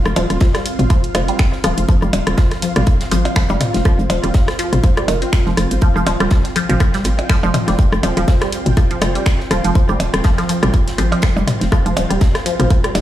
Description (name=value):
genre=minimal techno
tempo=122 BPM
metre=4/4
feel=swing 56% on 16ths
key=unclear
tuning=A4 = 440 Hz
part: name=flickering grainy texture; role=texture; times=0.0-13.0 s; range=F4 to G5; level=-30 LUFS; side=right 1 dB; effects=built-in reverb, sidechain pumping
part: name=granular cloud pad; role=texture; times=0.0-13.0 s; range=C4 to C6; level=-27 LUFS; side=right 1 dB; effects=built-in reverb, sidechain pumping
part: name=hollow knocking FM bass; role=bass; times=0.1-13.0 s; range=Eb1 to Ab1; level=-18 LUFS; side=equal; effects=sidechain pumping
part: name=crisp fusion drum kit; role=drums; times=0.1-13.0 s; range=hi-hat, snare drum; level=-33 LUFS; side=right 2 dB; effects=sidechain pumping on hats, high-pass filter on hats, high-pass filter on snare, high-pass filter on room
part: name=minimal click drum kit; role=percussion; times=0.1-13.0 s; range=percussion blips, rim click, toms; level=-22 LUFS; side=left 1 dB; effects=tape echo
part: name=resonant blip pluck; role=riff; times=0.2-13.0 s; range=Eb3 to C4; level=-22 LUFS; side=equal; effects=phaser, analog chorus, sidechain pumping, tape echo
part: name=garage drum kit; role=drums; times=0.2-13.0 s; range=finger snaps, hi-hat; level=-26 LUFS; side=right 1 dB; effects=none
part: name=electronic kick drum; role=drums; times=0.4-12.8 s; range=none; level=-14 LUFS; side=equal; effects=none
room=light reverb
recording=played on a big sound system in a bare room, stone room reverb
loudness=-13 LUFS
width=side -13 dB against mid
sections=0.0-13.0 A section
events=none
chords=0.0 F5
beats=0.41 0.90 1.39 | 1.89 2.38 2.87 3.36 | 3.85 4.34 4.84 5.33 | 5.82 6.31 6.80 7.29 | 7.79 8.28 8.77 9.26 | 9.75 10.25 10.74 11.23 | 11.72 12.21 12.71